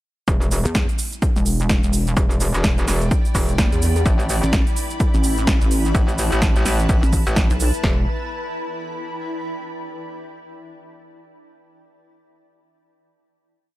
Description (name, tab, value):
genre	bass house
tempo	127 BPM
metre	4/4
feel	swing 59% on 16ths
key	E minor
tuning	A4 = 437 Hz
part	metallic wobble bass	bass	0.3-8.1 s	E1 to A1	-20 LUFS	equal	chorus, tube saturation, sidechain pumping
part	big-room dance drum kit	drums	0.3-8.0 s	kick drum, snare drum	-19 LUFS	equal	overdrive
part	big-room dance drum kit	drums	0.3-7.8 s	cabasa, hi-hat, snare drum	-25 LUFS	right 1 dB	overdrive
part	granular cloud pad	texture	1.6-9.7 s	E4 to B5	-30 LUFS	left 1 dB	built-in reverb, sidechain pumping
part	pulsing pluck wobble bass	bass	0.7-7.7 s	E1 to E2	-19 LUFS	equal	chorus, tube saturation, sidechain pumping
room	little or no reverb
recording	none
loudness	-17 LUFS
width	side -16 dB against mid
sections	0.3-7.8 drop; 7.8-9.7 final chord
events	drop 0.3-7.8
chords	0.3 Em7; 4.1 Asus2; 7.8 Em7